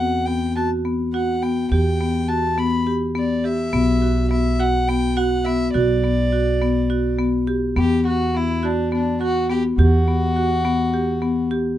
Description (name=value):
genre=contemporary instrumental, chamber music in an uneven meter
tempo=208 BPM (eighths)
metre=7/8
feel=straight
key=unclear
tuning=A4 = 440 Hz
part: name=clear violin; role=melody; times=0.0-11.5 s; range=D4 to B5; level=-25 LUFS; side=left 2 dB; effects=none
part: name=marimba with hard mallets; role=arpeggios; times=0.0-11.7 s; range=B3 to G4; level=-20 LUFS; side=left 1 dB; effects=none
part: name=upright bass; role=bass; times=0.0-11.8 s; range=B1 to E2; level=-23 LUFS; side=right 1 dB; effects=none
room=light reverb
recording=dark, warm production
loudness=-17 LUFS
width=side -12 dB against mid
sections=0.0-7.8 A section; 7.8-11.8 B section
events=none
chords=0.0 Gmaj7/E; 3.7 Bm; 7.8 Gmaj7/E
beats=0.27 0.56 0.85 1.14 1.43 | 1.71 2.00 2.29 2.58 2.87 3.16 3.44 | 3.73 4.02 4.31 4.60 4.88 5.17 5.46 | 5.75 6.04 6.33 6.61 6.90 7.19 7.48 | 7.76 8.05 8.34 8.63 8.92 9.20 9.49 | 9.78 10.07 10.36 10.64 10.93 11.22 11.51